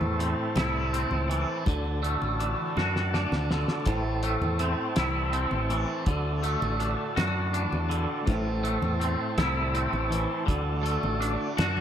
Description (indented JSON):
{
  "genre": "psychedelic rock",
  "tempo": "54 BPM (dotted quarters)",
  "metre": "6/8",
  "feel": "straight",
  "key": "A dorian",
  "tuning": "A4 = 439 Hz",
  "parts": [
    { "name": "overdriven combo organ", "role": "sustained chords", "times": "0.0-11.8 s", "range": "E4 to A5", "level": "-34 LUFS", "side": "right 4 dB", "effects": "none" },
    { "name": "twangy electric guitar", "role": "riff", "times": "0.0-11.8 s", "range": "A2 to F#4", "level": "-29 LUFS", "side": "left 1 dB", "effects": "rotary speaker" },
    { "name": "growling fingered electric bass", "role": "bass", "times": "0.0-11.8 s", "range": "A1 to F#2", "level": "-29 LUFS", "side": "equal", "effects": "overdrive" },
    { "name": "tanpura", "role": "drone", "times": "0.0-11.8 s", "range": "A2 to A3", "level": "-38 LUFS", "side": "left 1 dB", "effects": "stereo widening" },
    { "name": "congas", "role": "percussion", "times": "0.0-11.8 s", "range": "none", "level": "-38 LUFS", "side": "left 2 dB", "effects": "none" },
    { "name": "cloth-damped thuddy drum kit", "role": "drums", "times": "0.2-11.8 s", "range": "hi-hat, kick drum, snare drum", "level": "-30 LUFS", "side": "equal", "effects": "none" }
  ],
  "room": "light reverb, small room ambience",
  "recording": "none",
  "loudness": "-25 LUFS",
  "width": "side -9 dB against mid",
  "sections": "0.0-11.8 A section",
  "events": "drum fill 2.8-3.9",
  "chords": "0.0 Am; 1.7 D; 3.9 Am; 6.1 D; 8.3 Am; 10.5 D"
}